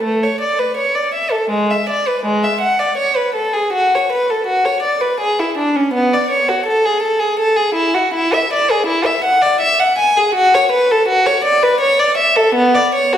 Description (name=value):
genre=classical, baroque-style suite movement for unaccompanied violin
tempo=82 BPM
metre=3/4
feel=rubato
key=unclear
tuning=A4 = 441 Hz
part: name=rich violin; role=solo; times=0.0-13.2 s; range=G#3 to G#5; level=-13 LUFS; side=equal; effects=none
room=wet recital hall reverb, RT60 1.6 s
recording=heard from further back in the room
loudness=-13 LUFS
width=side -10 dB against mid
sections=0.0-13.2 A section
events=none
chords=none